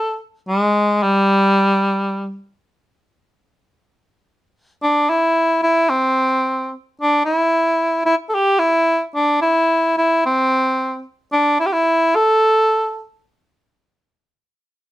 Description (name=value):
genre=andean folk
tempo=110 BPM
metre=2/4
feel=straight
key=unclear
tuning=A4 = 440 Hz
part: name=mellow cor anglais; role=solo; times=0.0-2.4, 4.8-13.0 s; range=G3 to A4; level=-14 LUFS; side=equal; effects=none
room=light reverb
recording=none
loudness=-15 LUFS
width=side -15 dB against mid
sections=0.5-4.8 A section; 4.8-13.7 B section; 13.7-14.9 C section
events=slowing down 11.3-13.7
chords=none